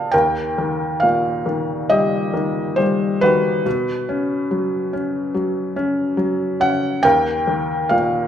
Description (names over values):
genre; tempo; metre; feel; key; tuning
classical, lyrical solo piano; 70 BPM; 4/4; rubato; unclear; A4 = 444 Hz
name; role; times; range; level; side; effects
felt-muted upright piano; solo; 0.0-8.3 s; Eb2 to A5; -17 LUFS; equal; none
room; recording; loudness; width
moderate concert hall reverb, RT60 1.8 s; minimal, uncompressed stereo recording; -17 LUFS; side -9 dB against mid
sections
0.1-8.3 A section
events
none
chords
0.1 Eb; 3.7 Bsus2; 7.0 Eb